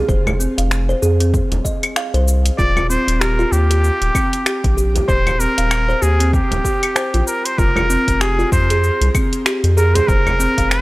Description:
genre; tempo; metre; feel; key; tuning
organic downtempo; 96 BPM; 4/4; swing 58% on 16ths; F minor; A4 = 441 Hz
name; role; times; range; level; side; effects
kalimba; arpeggios; 0.0-10.7 s; C4 to F5; -21 LUFS; equal; low-pass filter, shimmer reverb
round analog bass; bass; 0.1-10.8 s; Eb1 to F2; -17 LUFS; equal; sidechain pumping
deep house drum kit; drums; 0.1-10.8 s; cabasa, claves, finger snaps, hi-hat; -21 LUFS; left 1 dB; overdrive, small room ambience
electronic kick drum; drums; 0.1-10.7 s; none; -19 LUFS; equal; overdrive, small room ambience
frame drum; percussion; 0.3-10.4 s; none; -25 LUFS; right 1 dB; none
trumpet with straight mute; melody; 2.6-10.8 s; G4 to D5; -21 LUFS; equal; analog delay, shimmer reverb
room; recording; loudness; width
light reverb, studio reverb; dry, gritty hardware recording; -14 LUFS; side -20 dB against mid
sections
0.0-7.6 A section; 7.6-10.8 B section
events
none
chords
0.0 F5; 2.6 Eb; 7.6 Fm

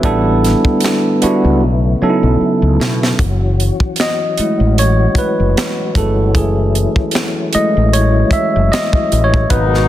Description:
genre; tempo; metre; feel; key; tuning
R&B, neo-soul; 76 BPM; 4/4; swing 56% on 16ths; F# dorian from 3.2 s; A4 = 440 Hz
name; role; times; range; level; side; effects
tine electric piano; accompaniment; 0.0-9.9 s; F#3 to E5; -15 LUFS; right 1 dB; none
mellow tonewheel organ; sustained chords; 0.0-9.9 s; B2 to A#4; -22 LUFS; left 3 dB; slow rotary speaker, chorus vibrato
fretless electric bass; bass; 0.0-9.9 s; F#1 to B2; -14 LUFS; equal; wide subtle chorus
tight funk drum kit; drums; 0.0-9.8 s; finger snaps, hi-hat, kick drum, snare drum; -17 LUFS; equal; none
warm horn section; stabs; 9.5-9.9 s; B2 to D#4; -18 LUFS; left 10 dB; none
room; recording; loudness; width
light reverb, studio reverb; dense, heavily limited modern master; -11 LUFS; side -13 dB against mid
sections
0.0-3.2 A section; 3.2-9.9 B section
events
drum fill 1.6-3.2; tine electric piano solo 3.2-9.9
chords
0.0 A9sus4; 1.6 B9sus4; 3.2 F#m9

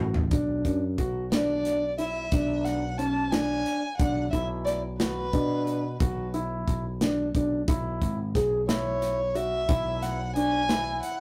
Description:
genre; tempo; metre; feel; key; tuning
progressive instrumental, band music in an uneven meter; 179 BPM (eighths); 11/8; straight; B dorian; A4 = 440 Hz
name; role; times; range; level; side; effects
dark baby grand piano; arpeggios; 0.0-11.2 s; C#4 to G#4; -31 LUFS; equal; none
sustaining fretless electric bass; bass; 0.0-11.0 s; G#1 to B2; -35 LUFS; equal; none
modern studio drum kit; drums; 0.1-11.2 s; hi-hat, kick drum, snare drum, toms; -31 LUFS; equal; none
dark violin; melody; 1.3-11.2 s; B4 to A5; -32 LUFS; equal; none
room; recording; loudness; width
moderate studio reverb, RT60 0.5 s; rough rehearsal-room recording, tube saturation; -27 LUFS; mono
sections
0.3-11.2 A section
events
drum fill 0.0-0.3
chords
0.3 Bm; 7.7 C#m (rootless)

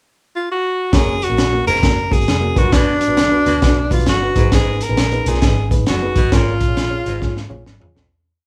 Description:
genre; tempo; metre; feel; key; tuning
uptempo 1960s-style soul; 134 BPM; 4/4; swing 65% on 8ths; F# major; A4 = 440 Hz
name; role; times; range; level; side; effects
breathy tenor saxophone; melody; 0.4-7.7 s; D4 to A#4; -21 LUFS; equal; none
reed electric piano; accompaniment; 0.9-8.0 s; G#2 to C#5; -28 LUFS; equal; overdrive, fast tremolo
breathy baritone saxophone; riff; 0.9-8.1 s; E#2 to B2; -29 LUFS; equal; none
vintage muted picked electric bass; bass; 0.9-8.1 s; E#1 to G#2; -24 LUFS; equal; none
crunchy breakbeat drum kit; drums; 0.9-8.1 s; hi-hat, kick drum, snare drum, toms; -20 LUFS; equal; none
congas; percussion; 0.9-8.0 s; none; -32 LUFS; equal; none
room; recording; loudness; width
moderate large studio reverb, RT60 1.1 s; band playing live in one room; -16 LUFS; mono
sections
0.0-0.9 pickup bar; 0.9-8.1 verse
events
fade-out 6.3-8.1; drum fill 7.2-8.1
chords
0.0 N.C.; 0.9 F#; 2.5 Bm/F#; 4.3 G#m; 6.3 C#/G#

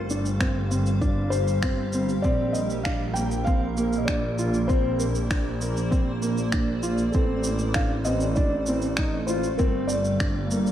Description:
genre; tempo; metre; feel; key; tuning
piano and strings electronica; 98 BPM; 4/4; straight; Bb major; A4 = 438 Hz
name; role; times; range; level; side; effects
felt-muted upright piano; melody; 0.0-10.7 s; A4 to G5; -30 LUFS; left 1 dB; tape echo
granular cloud pad; sustained chords; 0.0-10.7 s; G3 to F5; -32 LUFS; right 2 dB; built-in reverb, sidechain pumping
clear symphonic double bass section; bass; 0.0-10.7 s; G1 to Bb1; -27 LUFS; equal; sidechain pumping
dark upright piano; riff; 0.1-10.7 s; Bb3 to F4; -29 LUFS; equal; tape echo
electronic shaker and finger snaps; drums; 0.1-10.7 s; none; -34 LUFS; right 1 dB; none
electronic kick drum; drums; 0.4-10.3 s; none; -25 LUFS; equal; none
room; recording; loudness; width
light reverb, studio ambience; none; -22 LUFS; side -11 dB against mid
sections
0.0-2.2 A section; 2.2-10.7 A section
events
drop 0.0-2.2, 2.2-10.7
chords
0.0 Gm7; 2.2 Bbadd9; 7.1 F/A; 9.6 Gm7

